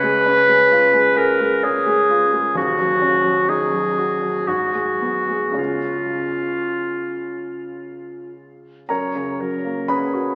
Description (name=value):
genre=classical, romantic duo for clarinet and grand piano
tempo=52-67 BPM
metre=3/4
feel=rubato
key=unclear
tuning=A4 = 440 Hz
part: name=clear clarinet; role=melody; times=0.0-10.3 s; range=E#4 to C#5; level=-20 LUFS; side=equal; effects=none
part: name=warm baby grand piano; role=accompaniment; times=0.0-10.3 s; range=D#1 to B5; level=-26 LUFS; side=equal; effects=none
room=wet cathedral reverb, RT60 4.3 s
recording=recorded in a church or concert hall, small speaker sound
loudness=-19 LUFS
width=mono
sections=0.0-8.9 A section; 8.9-10.3 B section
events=none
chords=0.0 C#7; 2.6 D#m7; 4.5 G#m; 5.6 C#; 8.9 F#